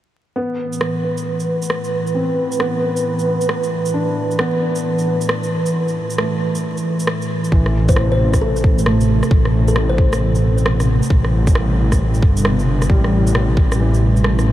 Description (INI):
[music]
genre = future garage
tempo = 134 BPM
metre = 4/4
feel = swing 64% on 16ths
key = A minor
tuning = A4 = 440 Hz
[part]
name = felt-muted upright piano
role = accompaniment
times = 0.4-14.5 s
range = E3 to D4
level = -25 LUFS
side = left 1 dB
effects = sidechain pumping, analog delay
[part]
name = airy breathy pad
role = sustained chords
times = 0.4-14.5 s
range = A2 to B4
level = -20 LUFS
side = right 1 dB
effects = chorus, sidechain pumping
[part]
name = electronic shaker and rim click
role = drums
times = 0.7-14.4 s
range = none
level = -25 LUFS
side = right 1 dB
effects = none
[part]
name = swelling detuned saw bass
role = bass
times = 7.5-14.5 s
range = G1 to A1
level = -16 LUFS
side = equal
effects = sidechain pumping
[part]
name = electronic kick drum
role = drums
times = 7.5-13.7 s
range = none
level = -14 LUFS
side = equal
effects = none
[part]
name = kalimba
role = melody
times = 7.9-10.2 s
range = A4 to C5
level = -25 LUFS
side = left 2 dB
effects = analog delay
[sound]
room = moderate huge ambient reverb, RT60 7.2 s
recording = dreamy mix soaked in reverb, vinyl crackle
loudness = -15 LUFS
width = side -13 dB against mid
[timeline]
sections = 0.4-7.5 A section; 7.5-14.5 B section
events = filter sweep on analog synth pad 0.4-7.5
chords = 0.4 Amadd9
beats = | 0.36 0.81 1.26 1.70 | 2.15 2.60 3.05 3.49 | 3.94 4.39 4.84 5.29 | 5.73 6.18 6.63 7.08 | 7.52 7.97 8.42 8.87 | 9.31 9.76 10.21 10.66 | 11.11 11.55 12.00 12.45 | 12.90 13.35 13.79 14.24